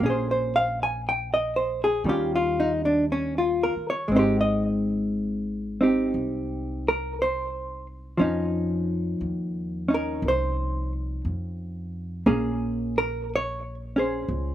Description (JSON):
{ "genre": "jazz ballad", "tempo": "59 BPM", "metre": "4/4", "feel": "swing 67% on 8ths", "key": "Bb minor", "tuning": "A4 = 440 Hz", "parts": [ { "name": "hollow-body jazz guitar", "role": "accompaniment", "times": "0.0-14.5 s", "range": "Eb3 to Ab5", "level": "-23 LUFS", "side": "equal", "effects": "none" }, { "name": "upright bass", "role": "bass", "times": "0.0-14.5 s", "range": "Ab1 to F2", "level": "-32 LUFS", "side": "equal", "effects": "none" } ], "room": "little or no reverb", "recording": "recorded outdoors, with no room sound", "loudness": "-23 LUFS", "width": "side -12 dB against mid", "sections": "0.0-14.5 A section", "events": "none", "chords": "0.0 Bbm9; 2.1 Eb9; 4.1 Abmaj7; 8.2 F5; 12.3 Bbm9" }